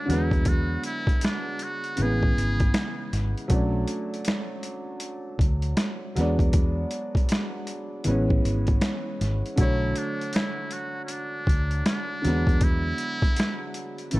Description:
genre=lo-fi hip hop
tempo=79 BPM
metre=4/4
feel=swing 62% on 16ths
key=unclear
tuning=A4 = 435 Hz
part: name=trumpet with metal mute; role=melody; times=0.0-3.1, 9.6-14.2 s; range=C#4 to A4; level=-32 LUFS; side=equal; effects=low-pass filter
part: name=clear upright piano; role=accompaniment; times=0.0-14.2 s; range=C#3 to C#5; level=-30 LUFS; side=equal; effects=low-pass filter
part: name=vintage muted fingered electric bass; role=bass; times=0.1-14.2 s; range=G#1 to E2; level=-25 LUFS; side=equal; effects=none
part: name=boom bap sampler-style drum kit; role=drums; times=0.1-14.2 s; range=hi-hat, kick drum, snare drum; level=-25 LUFS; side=equal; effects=overdrive
room=light reverb, digital ambience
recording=none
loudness=-23 LUFS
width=side -19 dB against mid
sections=0.0-14.2 A section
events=none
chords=0.1 E9; 2.0 Amaj7; 3.5 Bm7; 6.2 E9; 8.1 Amaj7; 9.6 Bm7; 12.2 E9

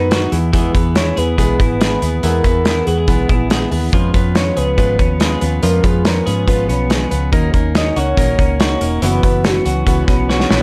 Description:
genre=jangly indie pop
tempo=141 BPM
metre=4/4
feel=straight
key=unclear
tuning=A4 = 441 Hz
part: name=soft octave-layered synth lead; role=melody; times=0.0-10.6 s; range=F#4 to D#5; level=-23 LUFS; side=equal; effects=chorus, phaser, slapback echo
part: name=fingerpicked plugged-in steel-string acoustic guitar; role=accompaniment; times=0.0-10.6 s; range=F#2 to B4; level=-24 LUFS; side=equal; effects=none
part: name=twelve-string electric guitar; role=arpeggios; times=0.0-10.6 s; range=E3 to G#4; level=-24 LUFS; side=equal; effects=slapback echo
part: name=vintage muted fingered electric bass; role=bass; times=0.0-10.6 s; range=E1 to G#2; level=-21 LUFS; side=equal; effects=none
part: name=loose indie drum kit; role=drums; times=0.1-10.6 s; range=hi-hat, kick drum, snare drum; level=-19 LUFS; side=equal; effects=none
room=little or no reverb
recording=dark, warm production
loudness=-15 LUFS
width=mono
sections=0.0-10.6 A section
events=drum fill 10.3-10.6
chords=0.3 E; 3.9 C#7; 7.3 D#m7; 9.0 F#7sus4

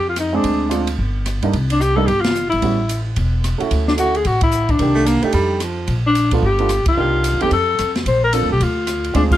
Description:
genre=jazz, small-group swing and bop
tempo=220 BPM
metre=4/4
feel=swing 61% on 8ths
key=Bb major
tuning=A4 = 442 Hz
part: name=breathy alto saxophone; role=melody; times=0.0-9.4 s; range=D4 to C5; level=-18 LUFS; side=left 2 dB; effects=plate reverb
part: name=upright bass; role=bass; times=0.0-9.4 s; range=E1 to G2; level=-20 LUFS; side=equal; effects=none
part: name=open jazz drum kit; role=drums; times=0.2-9.4 s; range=crash cymbal, hi-hat, kick drum, ride cymbal, rim click, snare drum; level=-24 LUFS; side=equal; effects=none
part: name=warm upright piano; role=accompaniment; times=0.3-9.4 s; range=Eb3 to A4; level=-21 LUFS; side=right 4 dB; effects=none
part: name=bright baritone saxophone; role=second line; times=5.0-6.0 s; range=F3 to Bb3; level=-20 LUFS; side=right 3 dB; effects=none
room=light reverb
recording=dark, warm production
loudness=-15 LUFS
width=side -13 dB against mid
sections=0.0-8.1 A section; 8.1-9.4 B section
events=band accent 2.2, 4.4, 6.8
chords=0.4 Dm7b5; 1.0 G5; 1.5 C5; 2.6 A13; 3.7 Dmaj9; 4.8 Cm9; 5.3 F13; 5.9 Bbmaj7; 6.4 G7; 7.0 Cm7; 7.5 F; 8.1 Bbmaj7

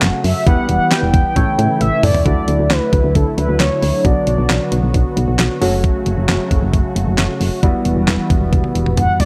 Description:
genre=synth-pop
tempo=134 BPM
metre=4/4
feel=straight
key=D major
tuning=A4 = 436 Hz
part: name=warm baby grand piano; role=accompaniment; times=0.0-9.3 s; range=F#3 to C#5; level=-26 LUFS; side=equal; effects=none
part: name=warm analog pad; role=sustained chords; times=0.0-9.3 s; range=C#3 to F#4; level=-24 LUFS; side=equal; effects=chorus
part: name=solid FM bass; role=bass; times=0.0-9.3 s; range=E1 to A2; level=-20 LUFS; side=equal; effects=none
part: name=clean 12-bit digital drum machine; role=drums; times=0.0-9.3 s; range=handclaps, hi-hat, kick drum, snare drum, toms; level=-19 LUFS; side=equal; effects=none
part: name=mellow horn-like synth lead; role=melody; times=0.2-4.9, 9.0-9.3 s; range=A4 to G5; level=-21 LUFS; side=equal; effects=chorus
room=light reverb, digital ambience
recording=dark, warm production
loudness=-16 LUFS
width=mono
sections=0.0-2.3 A section; 2.3-9.3 B section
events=drum fill 1.8-2.3, 8.5-9.3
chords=0.5 Em; 1.4 A; 2.3 Dadd9; 4.0 Bm; 5.6 F#m; 7.6 Emadd9

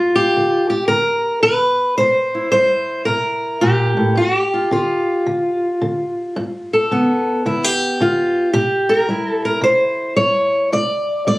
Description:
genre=acoustic country blues, solo or duo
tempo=110 BPM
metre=4/4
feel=swing 65% on 8ths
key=unclear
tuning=A4 = 440 Hz
part: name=fingerpicked steel-string acoustic guitar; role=solo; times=0.0-11.4 s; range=G2 to D5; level=-15 LUFS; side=equal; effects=none
room=light reverb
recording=recorded on a phone in the room, club reverb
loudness=-15 LUFS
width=side -20 dB against mid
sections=0.0-11.4 A section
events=none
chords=0.0 G7; 2.0 C7; 4.2 G7; 8.5 C7

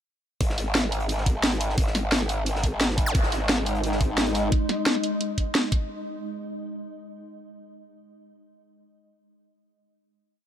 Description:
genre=dark technical drum and bass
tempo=175 BPM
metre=4/4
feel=straight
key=unclear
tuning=A4 = 439 Hz
part: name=growl bass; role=bass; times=0.4-4.5 s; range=G#1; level=-26 LUFS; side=equal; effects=chorus, tube saturation
part: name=crunchy breakbeat drum kit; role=drums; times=0.4-4.4 s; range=hi-hat, snare drum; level=-35 LUFS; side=equal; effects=high-pass filter on hats, high-pass filter on snare, high-pass filter on room
part: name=drum and bass drum kit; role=drums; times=0.4-5.8 s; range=hi-hat, snare drum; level=-25 LUFS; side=equal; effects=none
part: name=electronic kick drum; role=drums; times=0.4-5.8 s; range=none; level=-24 LUFS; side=equal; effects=none
part: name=swarming drone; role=sustained chords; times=3.5-4.5 s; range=G#3 to D#5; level=-30 LUFS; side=left 1 dB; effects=built-in reverb, sidechain pumping
part: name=zap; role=sound effects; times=3.1 s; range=none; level=-32 LUFS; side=equal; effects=none
room=little or no reverb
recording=none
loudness=-22 LUFS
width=side -10 dB against mid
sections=0.4-5.9 drop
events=drop 0.4-5.9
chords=0.4 G#5

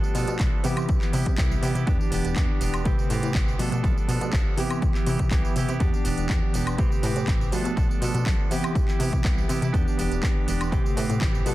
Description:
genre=filtered disco house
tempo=122 BPM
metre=4/4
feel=straight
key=unclear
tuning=A4 = 440 Hz
part: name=tine electric piano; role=accompaniment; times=0.0-11.5 s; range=C3 to B4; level=-29 LUFS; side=equal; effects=overdrive, fast stereo tremolo, phaser, vintage 12-bit sampler grit, sidechain pumping
part: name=direct-recorded clean electric guitar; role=riff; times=0.0-11.5 s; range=E3 to A4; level=-33 LUFS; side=right 4 dB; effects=sidechain pumping
part: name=house drum kit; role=drums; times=0.0-11.5 s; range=handclaps, hi-hat, tambourine, woodblock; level=-34 LUFS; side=equal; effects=overdrive, sidechain pumping on hats, sidechain pumping on perc, sidechain pumping on cymbals
part: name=plucky analog bass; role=bass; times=0.1-11.5 s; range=E1 to C3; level=-28 LUFS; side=equal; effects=sidechain pumping
part: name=electronic kick drum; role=drums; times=0.4-11.3 s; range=none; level=-24 LUFS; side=equal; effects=overdrive
room=digital ambience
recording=dense, heavily limited modern master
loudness=-21 LUFS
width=side -16 dB against mid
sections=0.0-11.5 A section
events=none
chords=0.0 G9/B; 0.6 Cmaj7; 1.9 Em7; 2.9 Am9; 3.6 G9/B; 4.6 Cmaj7; 5.8 Em7; 6.8 Am9; 7.5 G9/B; 8.5 Cmaj7; 9.7 Em7; 10.7 Am9

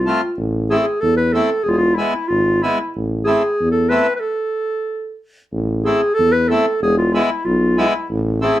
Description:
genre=klezmer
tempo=93 BPM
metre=2/4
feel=straight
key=A harmonic minor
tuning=A4 = 440 Hz
part: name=warm clarinet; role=melody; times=0.0-8.6 s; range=E4 to B4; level=-18 LUFS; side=equal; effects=none
part: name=warm tuba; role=bass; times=0.0-8.5 s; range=E1 to E2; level=-20 LUFS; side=equal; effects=none
part: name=accordion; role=accompaniment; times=0.1-8.6 s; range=G#3 to F4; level=-19 LUFS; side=equal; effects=none
room=moderate small room reverb, RT60 0.6 s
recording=band playing live in one room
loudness=-15 LUFS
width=side -13 dB against mid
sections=0.0-5.5 A section; 5.5-8.6 A section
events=stop 4.2-5.5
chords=0.4 Am; 1.6 E; 2.9 Am; 4.2 N.C.; 5.5 Am; 6.8 E; 8.1 Am

